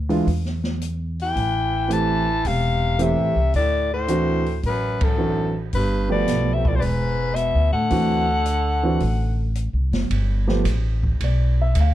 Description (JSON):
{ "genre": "jazz, small-group swing and bop", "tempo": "110 BPM", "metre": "4/4", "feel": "swing 69% on 8ths", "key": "G major", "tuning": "A4 = 440 Hz", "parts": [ { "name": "upright bass", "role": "bass", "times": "0.0-11.9 s", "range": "E1 to A2", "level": "-22 LUFS", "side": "equal", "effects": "none" }, { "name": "warm baby grand piano", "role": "accompaniment", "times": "0.1-11.9 s", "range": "E3 to F5", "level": "-23 LUFS", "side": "right 3 dB", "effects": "none" }, { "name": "open jazz drum kit", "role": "drums", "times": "0.1-11.9 s", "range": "hi-hat, kick drum, ride cymbal, snare drum", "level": "-27 LUFS", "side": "equal", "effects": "none" }, { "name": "growling soprano saxophone", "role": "melody", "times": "1.2-9.5 s", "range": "A4 to A5", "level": "-24 LUFS", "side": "left 4 dB", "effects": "none" }, { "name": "warm baritone saxophone", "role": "second line", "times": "1.2-9.5 s", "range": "F#2 to E3", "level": "-28 LUFS", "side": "right 4 dB", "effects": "none" } ], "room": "light reverb", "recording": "dark, warm production", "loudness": "-19 LUFS", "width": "side -13 dB against mid", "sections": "0.0-10.1 A section; 10.1-11.9 B section", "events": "band accent 4.9", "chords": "0.3 N.C.; 1.4 Am7; 3.5 D9; 5.7 G9; 6.8 E7; 7.9 D9; 10.1 G9", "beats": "0.27 0.81 | 1.36 1.90 2.45 2.99 | 3.54 4.09 4.63 5.18 | 5.72 6.27 6.82 7.37 | 7.91 8.46 9.01 9.56 | 10.11 10.65 11.20 11.75" }